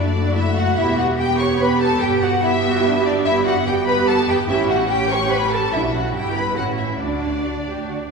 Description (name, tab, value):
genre	quick classical-period movement for string orchestra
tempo	144 BPM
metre	3/4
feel	straight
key	unclear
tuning	A4 = 439 Hz
part	rich studio violin section	melody	0.0-8.1 s	D5 to C#6	-24 LUFS	left 5 dB	none
part	clear studio violin section	second line	0.0-8.1 s	D5 to C#6	-26 LUFS	left 2 dB	none
part	rich studio viola section	accompaniment	0.0-8.0 s	A3 to G4	-21 LUFS	right 3 dB	none
part	rich symphonic cello section	bass	0.0-8.1 s	D4 to C#5	-22 LUFS	right 2 dB	none
part	warm symphonic double bass section	bass	0.0-8.1 s	E1 to D2	-25 LUFS	right 1 dB	none
room	wet concert hall reverb, RT60 2.3 s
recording	heard from further back in the room, small room reverb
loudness	-16 LUFS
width	side -4 dB against mid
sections	0.0-8.1 A section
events	none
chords	0.0 D/F#; 0.8 Em; 2.0 Em/G; 4.5 A7; 5.7 Bm; 6.1 Em/G; 6.6 A; 7.0 D